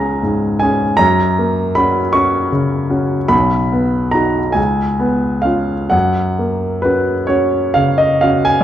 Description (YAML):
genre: classical, romantic nocturne for solo piano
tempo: 42-53 BPM (dotted quarters)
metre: 6/8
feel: rubato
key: F# major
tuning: A4 = 440 Hz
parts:
  - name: warm grand piano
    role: solo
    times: 0.0-8.6 s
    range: B1 to C#6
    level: -13 LUFS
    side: equal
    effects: none
room: moderate recital hall reverb, RT60 1.5 s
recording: none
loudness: -13 LUFS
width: side -11 dB against mid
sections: 0.0-8.6 A section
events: none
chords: 0.0 C#7; 1.0 F#; 3.3 B; 4.6 C#7; 5.9 F#